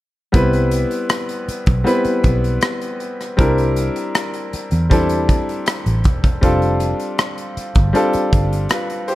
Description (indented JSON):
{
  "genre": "lush 1970s-style soul",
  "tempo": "79 BPM",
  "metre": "4/4",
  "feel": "straight",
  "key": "C major",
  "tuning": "A4 = 441 Hz",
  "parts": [
    { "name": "bright grand piano", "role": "accompaniment", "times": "0.3-9.2 s", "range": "G3 to C5", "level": "-19 LUFS", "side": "left 1 dB", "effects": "none" },
    { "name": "vintage muted fingered electric bass", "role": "bass", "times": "0.3-8.7 s", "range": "E1 to E2", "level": "-18 LUFS", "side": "equal", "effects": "none" },
    { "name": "modern studio drum kit", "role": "drums", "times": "0.3-9.2 s", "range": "hi-hat, kick drum, rim click", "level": "-18 LUFS", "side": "equal", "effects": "none" }
  ],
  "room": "small room ambience",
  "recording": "dark, warm production",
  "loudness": "-15 LUFS",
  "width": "side -16 dB against mid",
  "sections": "0.3-9.2 A section",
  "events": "none",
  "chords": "0.3 Cmaj7; 3.4 C9; 6.4 F69"
}